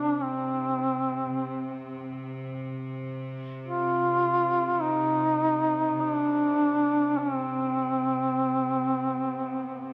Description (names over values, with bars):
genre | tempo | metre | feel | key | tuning
caucasian folk, Caucasian lament | free time | none | none | C minor | A4 = 441 Hz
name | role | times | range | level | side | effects
warm duduk | melody | 0.0-9.9 s | C4 to F4 | -27 LUFS | equal | tape echo
clear chamber cello section | drone | 0.0-9.9 s | C3 | -37 LUFS | equal | none
room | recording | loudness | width
wet recital hall reverb, RT60 1.4 s | none | -27 LUFS | mono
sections
0.0-9.9 A section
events
none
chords
none